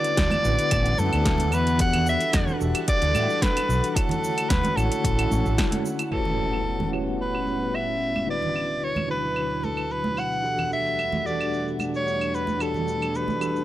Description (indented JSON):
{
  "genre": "sunset chillout",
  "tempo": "111 BPM",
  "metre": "4/4",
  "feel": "straight",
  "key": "E dorian",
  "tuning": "A4 = 442 Hz",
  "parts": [
    { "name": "bright soprano saxophone", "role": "melody", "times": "0.0-13.6 s", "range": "A4 to F#5", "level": "-26 LUFS", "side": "equal", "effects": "tape echo" },
    { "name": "mellow tine electric piano", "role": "accompaniment", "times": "0.0-13.6 s", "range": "D3 to C#5", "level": "-30 LUFS", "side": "equal", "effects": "medium stereo tremolo, auto-pan, low-pass filter" },
    { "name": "airy breathy pad", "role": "sustained chords", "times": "0.0-13.6 s", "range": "D2 to F#5", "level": "-32 LUFS", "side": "equal", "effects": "chorus" },
    { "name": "deep house drum kit", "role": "drums", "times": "0.0-13.6 s", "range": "cabasa, claves, crash cymbal, hi-hat, snare drum", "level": "-30 LUFS", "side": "right 1 dB", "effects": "overdrive, low-pass filter on hats, low-pass filter on perc, low-pass filter on snare, low-pass filter on cymbals, low-pass filter on room" },
    { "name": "fretless electric bass", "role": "bass", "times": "0.2-5.5 s", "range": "E1 to A2", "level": "-24 LUFS", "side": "equal", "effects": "lush chorus" },
    { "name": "electronic kick drum", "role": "drums", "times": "0.2-5.7 s", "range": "none", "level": "-25 LUFS", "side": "equal", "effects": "overdrive" },
    { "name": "congas", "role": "percussion", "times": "0.3-13.4 s", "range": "none", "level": "-33 LUFS", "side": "right 2 dB", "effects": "none" },
    { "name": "impact", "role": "sound effects", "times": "6.1-8.3 s", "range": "none", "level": "-33 LUFS", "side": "equal", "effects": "none" }
  ],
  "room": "digital ambience",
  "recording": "dry, gritty hardware recording",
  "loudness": "-22 LUFS",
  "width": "side -14 dB against mid",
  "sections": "0.0-6.1 A section; 6.1-13.6 B section",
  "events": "impact 6.1-8.3; filter sweep on tine electric piano 6.1-13.6",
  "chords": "0.0 D6; 1.8 Em11; 4.0 Dmaj9; 6.1 A13; 8.3 D6; 10.4 Em11"
}